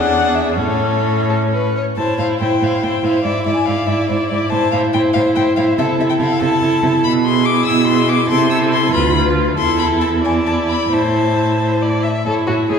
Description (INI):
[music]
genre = quick classical-period movement for string quartet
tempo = 85-97 BPM (dotted quarters)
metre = 6/8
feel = rubato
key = A minor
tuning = A4 = 440 Hz
[part]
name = dark violin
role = melody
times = 0.0-12.8 s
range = C5 to E6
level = -20 LUFS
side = left 6 dB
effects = none
[part]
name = warm violin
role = second line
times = 0.0-12.8 s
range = F#4 to E5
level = -21 LUFS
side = left 3 dB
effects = none
[part]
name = rich viola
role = accompaniment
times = 0.0-12.8 s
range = C#4 to F4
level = -18 LUFS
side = right 2 dB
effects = none
[part]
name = clear cello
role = bass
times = 0.0-12.8 s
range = D2 to C3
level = -19 LUFS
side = right 2 dB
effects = none
[sound]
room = wet concert hall reverb, RT60 1.9 s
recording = heard from further back in the room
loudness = -14 LUFS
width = side -6 dB against mid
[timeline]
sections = 0.0-2.0 A section; 2.0-12.3 B section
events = none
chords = 0.0 E7; 0.6 A; 2.0 Am; 3.2 E7/G#; 4.5 Am; 5.8 Am/C; 7.0 E/B; 8.3 Am/C; 8.9 Bdim/D; 9.6 A5/E; 10.9 Am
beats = | 0.59 1.29 | 1.98 2.62 | 3.25 3.88 | 4.52 5.15 | 5.78 6.40 | 7.03 7.67 | 8.30 8.94 | 9.58 10.24 | 10.91 11.59 | 12.26